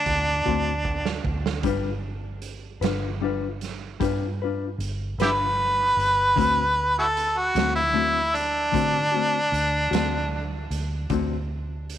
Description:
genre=slow blues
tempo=51 BPM (dotted quarters)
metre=12/8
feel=straight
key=D mixolydian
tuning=A4 = 440 Hz
part: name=bright harmonica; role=melody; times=0.0-10.7 s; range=D4 to B4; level=-22 LUFS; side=right 1 dB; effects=overdrive
part: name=vintage muted fingered electric bass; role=bass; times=0.0-12.0 s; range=G1 to D3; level=-30 LUFS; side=right 1 dB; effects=none
part: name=raw garage drum kit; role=drums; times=0.1-12.0 s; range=hi-hat, kick drum, snare drum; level=-32 LUFS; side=right 6 dB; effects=none
part: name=mellow electric guitar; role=accompaniment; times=0.5-11.4 s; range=D3 to B4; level=-28 LUFS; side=left 10 dB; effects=tremolo
room=light reverb, small room ambience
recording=1960s-style stereo with parts hard left and right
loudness=-21 LUFS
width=side -11 dB against mid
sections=0.0-12.0 A section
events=harmonica solo 0.0-12.0; drum fill 0.5-1.6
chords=0.0 D7; 1.6 G7; 6.4 D7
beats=0.47 | 1.65 2.83 4.01 5.19 | 6.38 7.56 8.74 9.93 | 11.11

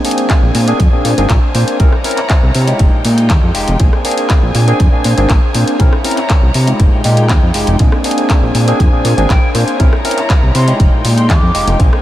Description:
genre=filtered disco house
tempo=120 BPM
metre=4/4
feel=straight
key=Bb mixolydian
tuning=A4 = 439 Hz
part: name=barky tine electric piano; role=accompaniment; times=0.0-12.0 s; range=Ab3 to C5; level=-17 LUFS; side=equal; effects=phaser, sidechain pumping, low-pass filter
part: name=warm chamber violin section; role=sustained chords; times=0.0-12.0 s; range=Ab3 to Bb5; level=-21 LUFS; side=left 1 dB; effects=sidechain pumping, low-pass filter
part: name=house drum kit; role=drums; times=0.0-12.0 s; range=handclaps, hi-hat, rim click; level=-20 LUFS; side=left 1 dB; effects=sidechain pumping on hats, studio reverb
part: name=electronic kick drum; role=drums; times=0.3-11.9 s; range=none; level=-11 LUFS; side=equal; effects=studio reverb
part: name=fat analog bass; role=bass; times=0.4-11.9 s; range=F1 to C3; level=-13 LUFS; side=equal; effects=sidechain pumping, low-pass filter
part: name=egg shaker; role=percussion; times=7.8-12.0 s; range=none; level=barely audible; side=none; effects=none
part: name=concert flute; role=melody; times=9.3-11.7 s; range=G5 to D6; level=-22 LUFS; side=left 1 dB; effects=sidechain pumping, low-pass filter, diffuse ambient delay
part: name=riser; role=sound effects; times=11.8-12.0 s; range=none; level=barely audible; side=none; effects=none
room=light reverb, studio reverb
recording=none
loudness=-9 LUFS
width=side -14 dB against mid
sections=0.0-12.0 A section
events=none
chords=0.0 Bb9; 1.8 C7b9; 2.8 Fm9; 3.8 Bb9; 5.8 C7b9; 6.8 Fm9; 7.8 Bb9; 9.8 C7b9; 10.8 Fm9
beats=0.30 0.80 1.30 | 1.80 2.30 2.80 3.30 | 3.80 4.30 4.80 5.30 | 5.80 6.30 6.80 7.30 | 7.80 8.30 8.80 9.30 | 9.80 10.30 10.80 11.30 | 11.80

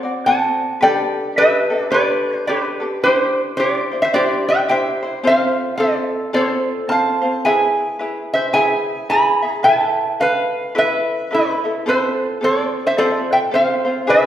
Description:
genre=Hawaiian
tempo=108 BPM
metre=4/4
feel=swing 60% on 8ths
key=unclear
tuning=A4 = 439 Hz
part: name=metal-body resonator slide guitar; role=melody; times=0.0-14.3 s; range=E4 to B5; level=-16 LUFS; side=right 1 dB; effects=none
part: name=ukulele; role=accompaniment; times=0.0-14.3 s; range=C4 to E5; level=-21 LUFS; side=left 1 dB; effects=none
room=wet recital hall reverb, RT60 1.6 s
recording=heard from further back in the room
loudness=-15 LUFS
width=side -11 dB against mid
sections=0.8-14.3 A section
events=none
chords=0.0 D7; 0.8 Gadd9; 3.0 Cadd9; 5.2 F; 7.4 E; 9.7 Esus4; 11.9 F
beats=0.25 | 0.81 1.36 1.91 2.46 | 3.02 3.57 4.12 4.67 | 5.23 5.78 6.33 6.89 | 7.44 7.99 8.54 9.10 | 9.65 10.20 10.76 11.31 | 11.86 12.42 12.97 13.52 | 14.08

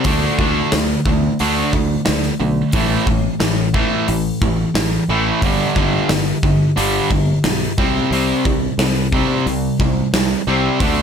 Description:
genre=hard rock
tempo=89 BPM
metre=4/4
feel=straight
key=unclear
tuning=A4 = 440 Hz
part: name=distorted electric guitar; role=riff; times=0.0-11.0 s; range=G2 to D4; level=-20 LUFS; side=right 11 dB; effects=overdrive
part: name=overdriven semi-hollow guitar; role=riff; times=0.0-11.0 s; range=G2 to D4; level=-20 LUFS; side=left 9 dB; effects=none
part: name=gated 80s drum kit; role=drums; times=0.0-11.0 s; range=hi-hat, kick drum, snare drum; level=-20 LUFS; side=equal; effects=none
part: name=sustaining fretless electric bass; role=bass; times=0.1-11.0 s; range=G1 to D2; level=-22 LUFS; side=equal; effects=none
room=light reverb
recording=none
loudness=-15 LUFS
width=side -7 dB against mid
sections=0.0-11.0 A section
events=none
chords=0.1 D5; 2.8 A5; 5.4 G5; 7.8 C5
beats=| 0.06 0.73 1.41 2.08 | 2.75 3.42 4.10 4.77 | 5.44 6.11 6.78 7.46 | 8.12 8.79 9.46 10.13 | 10.80

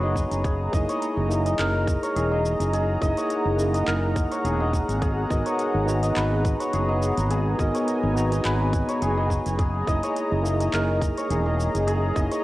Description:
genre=organic downtempo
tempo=105 BPM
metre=4/4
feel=swing 54% on 16ths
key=unclear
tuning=A4 = 438 Hz
part: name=mellow tine electric piano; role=accompaniment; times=0.0-12.4 s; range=A#3 to A#5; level=-29 LUFS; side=right 1 dB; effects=medium stereo tremolo, vintage 12-bit sampler grit, sidechain pumping, cassette tape, tape echo
part: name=warm analog pad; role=sustained chords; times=0.0-12.4 s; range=B3 to A#5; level=-29 LUFS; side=left 1 dB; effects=chorus, sidechain pumping, cassette tape
part: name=santur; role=arpeggios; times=0.0-12.4 s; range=G#4 to D#5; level=-27 LUFS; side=left 1 dB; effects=vintage 12-bit sampler grit, low-pass filter, cassette tape, tape echo
part: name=fretless electric bass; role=bass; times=0.0-12.3 s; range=E1 to G#1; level=-25 LUFS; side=equal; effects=wide subtle chorus, sidechain pumping
part: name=electronic kick drum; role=drums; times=0.2-12.3 s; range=none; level=-26 LUFS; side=equal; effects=cassette tape
part: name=organic electronic drum kit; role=drums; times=0.2-12.4 s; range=handclaps, hi-hat, shaker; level=-36 LUFS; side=equal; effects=cassette tape
room=moderate lush hall reverb, RT60 2.3 s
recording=home recording on cassette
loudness=-21 LUFS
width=side -17 dB against mid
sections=0.0-12.4 A section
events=none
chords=0.4 F#13; 5.0 G#m9; 9.6 F#13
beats=| 0.45 1.02 1.59 2.16 | 2.73 3.30 3.88 4.45 | 5.02 5.59 6.16 6.73 | 7.30 7.88 8.45 9.02 | 9.59 10.16 10.73 11.30 | 11.88

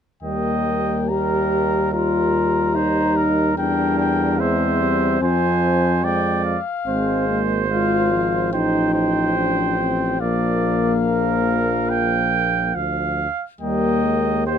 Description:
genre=classical, brass quintet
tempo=72 BPM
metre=4/4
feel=straight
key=Eb major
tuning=A4 = 440 Hz
part: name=mellow trumpet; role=melody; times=0.2-14.6 s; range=E5 to Bb5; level=-25 LUFS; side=left 8 dB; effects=none
part: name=clear trumpet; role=second line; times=0.2-14.6 s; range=Bb4 to G5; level=-24 LUFS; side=right 9 dB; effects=none
part: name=dark trombone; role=accompaniment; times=0.2-14.6 s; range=F3 to C4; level=-26 LUFS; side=right 4 dB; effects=none
part: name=mellow French horn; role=accompaniment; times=0.2-14.6 s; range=Ab3 to G4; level=-22 LUFS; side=left 4 dB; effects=none
part: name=bright bass trombone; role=bass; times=0.2-14.6 s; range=Ab1 to F2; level=-24 LUFS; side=right 1 dB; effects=none
room=little or no reverb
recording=close, detailed microphones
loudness=-17 LUFS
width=side -8 dB against mid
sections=0.2-14.6 A section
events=none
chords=0.2 Eb; 3.6 C7/E; 5.2 Fm; 6.9 Fm/Ab; 8.5 F7/A; 10.2 Bb; 13.6 Eb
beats=| 0.23 1.09 1.92 2.75 | 3.58 4.40 5.22 6.05 | 6.87 7.71 8.54 9.37 | 10.21 11.06 11.91 12.76 | 13.61 14.47

